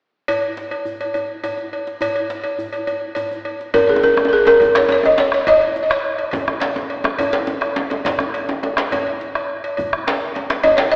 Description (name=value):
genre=west african traditional, West African drum ensemble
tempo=139 BPM (dotted quarters)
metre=12/8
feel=straight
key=unclear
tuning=A4 = 441 Hz
part: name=cowbell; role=percussion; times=0.3-10.9 s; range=none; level=-26 LUFS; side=equal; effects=none
part: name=djembe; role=percussion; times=0.3-11.0 s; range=none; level=-36 LUFS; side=equal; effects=none
part: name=balafon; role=melody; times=3.7-7.0, 10.6-11.0 s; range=G#4 to D#5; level=-16 LUFS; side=equal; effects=none
part: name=bombo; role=percussion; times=3.7-10.8 s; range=none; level=-28 LUFS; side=equal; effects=none
part: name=djembe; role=percussion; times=3.7-10.9 s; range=none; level=-25 LUFS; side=equal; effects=none
room=wet concert hall reverb, RT60 1.9 s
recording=recorded in a church or concert hall, AM radio sound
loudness=-19 LUFS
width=mono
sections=0.3-3.7 A section; 3.7-11.0 B section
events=none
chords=none